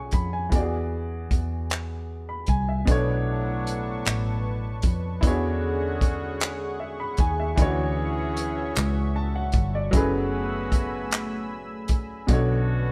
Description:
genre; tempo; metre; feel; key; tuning
slow six-eight R&B; 51 BPM (dotted quarters); 6/8; straight; B dorian; A4 = 440 Hz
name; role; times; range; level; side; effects
warm grand piano; accompaniment; 0.0-12.9 s; B2 to C#6; -32 LUFS; equal; none
vintage muted fingered electric bass; bass; 0.0-12.9 s; F#1 to E#2; -30 LUFS; equal; none
warm soul drum kit; drums; 0.1-12.5 s; handclaps, hi-hat, kick drum; -25 LUFS; equal; none
warm analog pad; sustained chords; 3.3-12.9 s; A3 to E6; -38 LUFS; equal; chorus
warm horn section; stabs; 2.9-12.9 s; A2 to G#4; -35 LUFS; equal; none
room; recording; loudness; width
light reverb; band playing live in one room; -26 LUFS; mono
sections
0.0-2.9 A section; 2.9-12.9 B section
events
none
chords
0.0 C#m7; 0.5 E7; 2.9 Bm9; 5.2 E13; 7.6 Dmaj9; 9.9 F#m11; 12.3 Bm9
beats
| 0.52 1.70 | 2.87 4.05 | 5.23 6.40 | 7.58 8.76 | 9.93 11.11 | 12.29

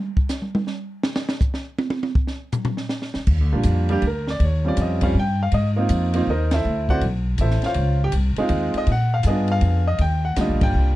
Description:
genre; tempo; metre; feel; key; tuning
jazz piano trio; 161 BPM; 3/4; swing 66% on 8ths; Eb major; A4 = 441 Hz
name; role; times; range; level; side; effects
compact cocktail drum kit; drums; 0.2-10.7 s; crash cymbal, hi-hat, kick drum, ride cymbal, snare drum, toms; -25 LUFS; equal; none
upright bass; bass; 3.2-11.0 s; G1 to Bb2; -20 LUFS; equal; none
clear grand piano; melody; 3.5-11.0 s; G3 to G5; -23 LUFS; right 1 dB; none
room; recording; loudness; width
little or no reverb; dark, warm production; -19 LUFS; side -16 dB against mid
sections
0.0-3.3 A section; 3.3-11.0 B section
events
drum solo 0.0-3.3; band accent 6.5, 10.6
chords
0.0 N.C.; 3.3 Ebmaj9 (rootless); 4.4 Eb13; 5.5 Ab69; 6.6 D9; 7.8 Dbmaj9; 8.9 Bb7b9; 10.0 Ebmaj9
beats
0.29 0.67 | 1.04 1.41 1.79 | 2.16 2.54 2.91 | 3.28 3.66 4.03 | 4.40 4.78 5.15 | 5.53 5.90 6.27 | 6.65 7.02 7.39 | 7.77 8.14 8.51 | 8.89 9.26 9.63 | 10.01 10.38 10.75

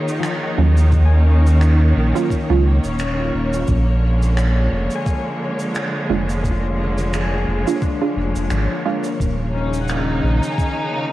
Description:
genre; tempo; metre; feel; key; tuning
ambient dub; 87 BPM; 4/4; swing 56% on 16ths; Eb minor; A4 = 439 Hz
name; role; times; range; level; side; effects
clear studio string section; sustained chords; 0.0-11.1 s; Db3 to Db5; -23 LUFS; equal; cassette tape
pedal steel guitar; arpeggios; 0.0-11.1 s; F3 to Ab5; -27 LUFS; left 7 dB; cassette tape, dub echo
cabasa and finger snaps; drums; 0.1-10.7 s; none; -32 LUFS; right 2 dB; studio reverb, dub echo
filtered dub chord stab; stabs; 0.6-9.1 s; Gb3 to F4; -25 LUFS; right 7 dB; chorus, cassette tape, dub echo
warm sub bass; bass; 0.6-10.4 s; Eb1 to Eb2; -16 LUFS; equal; tube saturation
electronic kick drum; drums; 0.9-10.7 s; none; -21 LUFS; equal; studio reverb
room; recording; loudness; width
light reverb; home recording on cassette; -16 LUFS; side -16 dB against mid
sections
0.0-11.1 A section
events
none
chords
0.0 Ebm7; 3.7 Bb7; 9.2 Ebm7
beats
0.24 | 0.93 1.61 2.31 3.00 | 3.68 4.37 5.06 5.75 | 6.44 7.13 7.82 8.51 | 9.20 9.89 10.58

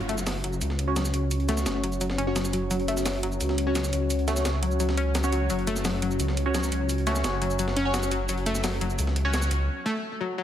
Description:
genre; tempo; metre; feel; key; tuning
dark technical drum and bass; 172 BPM; 4/4; straight; unclear; A4 = 440 Hz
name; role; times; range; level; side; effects
dark analog pad; sustained chords; 0.4-9.6 s; C#4 to C#5; -32 LUFS; left 2 dB; chorus
wide detuned saw bass; bass; 0.0-9.7 s; F#1 to C#2; -28 LUFS; equal; chorus, tube saturation
breakbeat sampler-style drum kit; drums; 0.0-9.6 s; hi-hat, snare drum; -35 LUFS; right 1 dB; high-pass filter on hats, high-pass filter on snare
analog pluck; arpeggios; 0.1-10.4 s; F#3 to C#4; -31 LUFS; left 2 dB; chorus, tape echo
electronic hi-hat and cabasa; drums; 0.1-9.6 s; none; -34 LUFS; right 2 dB; none
band-passed chord stab; stabs; 0.9-9.4 s; C#4 to C#5; -32 LUFS; right 1 dB; phaser, lush chorus, vintage 12-bit sampler grit, tape echo
room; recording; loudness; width
moderate lush hall reverb, RT60 2.2 s; heavily compressed radio sound; -24 LUFS; side -10 dB against mid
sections
0.0-10.4 A section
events
build-up 0.0-10.4; filter sweep on synth stab 0.0-10.4; break 9.7-10.4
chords
0.0 F#5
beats
0.27 0.61 0.96 | 1.31 1.66 2.01 2.36 | 2.71 3.06 3.40 3.75 | 4.10 4.45 4.80 5.15 | 5.50 5.85 6.20 6.54 | 6.89 7.24 7.59 7.94 | 8.29 8.64 8.99 9.34 | 9.68 10.03 10.38

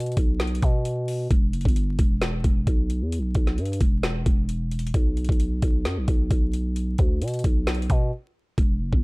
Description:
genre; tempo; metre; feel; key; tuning
hip hop, trap; 132 BPM; 4/4; half-time; unclear; A4 = 440 Hz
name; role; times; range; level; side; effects
growling 808-style bass; bass; 0.0-9.0 s; E1 to B2; -25 LUFS; equal; none
trap drum kit; drums; 0.0-9.0 s; hi-hat, kick drum, snare drum; -22 LUFS; equal; none
room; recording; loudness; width
little or no reverb; dark, warm production, vinyl crackle; -21 LUFS; side -27 dB against mid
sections
0.0-8.6 A section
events
break 8.1-8.6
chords
none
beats
0.40 0.85 | 1.31 1.76 2.21 2.67 | 3.12 3.58 4.03 4.49 | 4.94 5.40 5.85 6.31 | 6.76 7.21 7.67 8.12 | 8.58 9.03

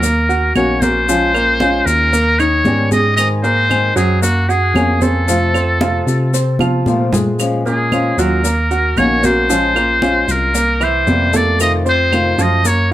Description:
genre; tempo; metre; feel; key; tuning
latin, Cuban son and guajira; 114 BPM; 4/4; straight; Bb minor; A4 = 440 Hz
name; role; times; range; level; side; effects
trumpet with metal mute; melody; 0.0-12.9 s; Gb4 to Eb5; -16 LUFS; equal; none
flamenco guitar; accompaniment; 0.0-12.7 s; C3 to Ab4; -19 LUFS; left 2 dB; none
clear grand piano; arpeggios; 0.0-12.9 s; Eb3 to Gb5; -20 LUFS; right 2 dB; none
tine electric piano; bass; 0.0-12.9 s; Bb1 to C3; -18 LUFS; equal; none
congas; percussion; 0.0-12.9 s; none; -21 LUFS; equal; none
maracas; percussion; 0.0-12.9 s; none; -26 LUFS; left 8 dB; none
claves; percussion; 0.6-12.4 s; none; -25 LUFS; right 6 dB; none
room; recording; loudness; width
light reverb; none; -12 LUFS; side -13 dB against mid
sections
0.0-12.9 A section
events
drum fill 6.6-7.4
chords
0.0 Ebm7; 1.1 Bbm7; 2.1 Eb7; 3.2 Abadd9; 4.2 Gbadd9; 5.3 F; 7.4 Bbm7; 8.4 Ebm7; 9.5 Bbm7; 10.6 C7; 11.6 F7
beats
0.02 0.55 | 1.07 1.60 2.12 2.65 | 3.18 3.70 4.23 4.76 | 5.28 5.81 6.34 6.86 | 7.39 7.92 8.44 8.97 | 9.50 10.02 10.55 11.08 | 11.60 12.13 12.66

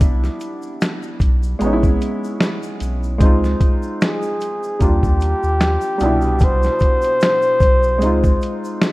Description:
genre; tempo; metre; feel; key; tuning
lo-fi hip hop; 75 BPM; 4/4; swing 56% on 16ths; unclear; A4 = 438 Hz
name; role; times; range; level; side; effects
felt-muted upright piano; accompaniment; 0.0-8.9 s; B2 to F4; -22 LUFS; equal; none
warm sub bass; bass; 0.0-8.4 s; A1 to Eb2; -19 LUFS; equal; none
lo-fi sampler-style drum kit; drums; 0.0-8.9 s; finger snaps, hi-hat, kick drum, snare drum; -17 LUFS; equal; none
egg shaker; percussion; 0.0-8.9 s; none; -46 LUFS; left 5 dB; none
breathy flugelhorn; melody; 4.0-8.8 s; G4 to C5; -18 LUFS; left 1 dB; none
room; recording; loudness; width
light reverb, studio reverb; rough home demo mix; -15 LUFS; side -20 dB against mid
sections
0.0-8.9 A section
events
none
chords
0.0 Cmaj9; 1.6 Amaj9; 3.2 Dbmaj9; 4.8 Ebmaj9; 6.0 Cmaj9; 8.0 Dbmaj9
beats
| 0.01 0.81 1.61 2.41 | 3.21 4.01 4.81 5.61 | 6.41 7.21 8.01 8.81

